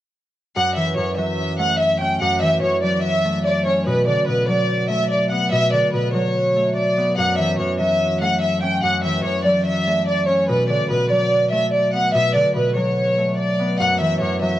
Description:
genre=hip hop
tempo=145 BPM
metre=4/4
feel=half-time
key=F# minor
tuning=A4 = 436 Hz
part: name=warm studio violin section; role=melody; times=0.6-14.6 s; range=B4 to G5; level=-19 LUFS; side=equal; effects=cassette tape, plate reverb
part: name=concert harp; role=accompaniment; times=0.6-14.6 s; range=F#2 to C#4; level=-21 LUFS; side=equal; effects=cassette tape, plate reverb
room=moderate studio reverb, RT60 0.5 s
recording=home recording on cassette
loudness=-17 LUFS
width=side -13 dB against mid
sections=0.6-13.8 A section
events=none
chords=0.6 F#m7; 3.9 Bm7; 7.2 F#m7; 10.5 Bm7; 13.8 F#m7

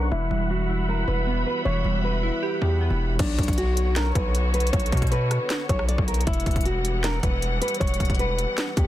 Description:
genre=hip hop, trap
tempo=156 BPM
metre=4/4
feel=half-time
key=B minor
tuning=A4 = 440 Hz
part: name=nylon-string guitar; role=melody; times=0.0-8.9 s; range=D4 to D5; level=-28 LUFS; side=equal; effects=low-pass filter, ping-pong delay
part: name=glassy digital keys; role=accompaniment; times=0.0-3.2 s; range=E3 to B4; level=-29 LUFS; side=right 3 dB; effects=chorus, low-pass filter
part: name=muted symphonic string section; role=sustained chords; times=0.0-8.9 s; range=D3 to B5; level=-31 LUFS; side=left 2 dB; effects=low-pass filter
part: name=distorted 808-style bass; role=bass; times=0.0-8.9 s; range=E1 to B2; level=-24 LUFS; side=equal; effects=distortion
part: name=trap drum kit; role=drums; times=3.2-8.9 s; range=crash cymbal, handclaps, hi-hat, kick drum, rim click, snare drum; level=-25 LUFS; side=equal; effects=none
room=little or no reverb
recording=dense, heavily limited modern master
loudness=-21 LUFS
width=side -13 dB against mid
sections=0.0-3.2 A section; 3.2-8.9 B section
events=none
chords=0.1 Emadd9; 3.2 Bmadd9; 6.3 Emadd9

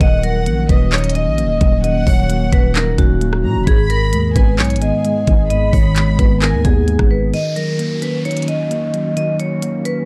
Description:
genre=hip hop, trap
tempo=131 BPM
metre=4/4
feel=half-time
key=Eb minor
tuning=A4 = 440 Hz
part: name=vibraphone with medium hard mallets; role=melody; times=0.0-10.0 s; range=Gb4 to Eb5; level=-24 LUFS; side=equal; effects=low-pass filter
part: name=warm chamber violin section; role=second line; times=0.0-6.9 s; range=Eb5 to Cb6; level=-29 LUFS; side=equal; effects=digital delay
part: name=mellow tine electric piano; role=accompaniment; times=0.0-10.1 s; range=Ab2 to Eb4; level=-22 LUFS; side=equal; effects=low-pass filter
part: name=hollow soft pad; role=sustained chords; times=0.0-10.1 s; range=Eb3 to Ab4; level=-31 LUFS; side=equal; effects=ensemble chorus
part: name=growling 808-style bass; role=bass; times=0.0-7.3 s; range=Eb1 to Bb2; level=-20 LUFS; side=equal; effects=none
part: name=trap drum kit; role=drums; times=0.0-10.0 s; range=handclaps, hi-hat, kick drum, rim click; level=-18 LUFS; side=equal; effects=none
part: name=downlifter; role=sound effects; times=7.3-10.1 s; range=none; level=-34 LUFS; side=equal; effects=none
room=little or no reverb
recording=dark, warm production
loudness=-16 LUFS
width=mono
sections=0.0-7.3 A section; 7.3-10.1 B section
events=none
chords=0.0 Ebm7; 3.7 Abm; 7.3 Ebm7

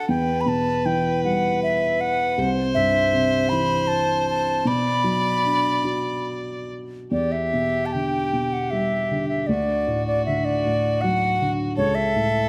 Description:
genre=celtic folk, Celtic slow air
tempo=70-82 BPM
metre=3/4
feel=rubato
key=E minor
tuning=A4 = 440 Hz
part: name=bright baroque flute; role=melody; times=0.0-12.5 s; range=C#5 to B5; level=-25 LUFS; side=equal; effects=none
part: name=clear fiddle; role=second line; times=0.0-12.5 s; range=F#4 to D5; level=-30 LUFS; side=equal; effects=none
part: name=felt-muted upright piano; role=accompaniment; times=0.0-12.5 s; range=C2 to F#4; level=-27 LUFS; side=equal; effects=none
room=moderate recital hall reverb, RT60 1.4 s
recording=none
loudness=-22 LUFS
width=mono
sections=0.0-7.1 A section; 7.1-12.5 B section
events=none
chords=0.1 Em; 2.4 C; 4.7 Bm; 7.1 Em7; 9.5 D; 11.8 A/C#

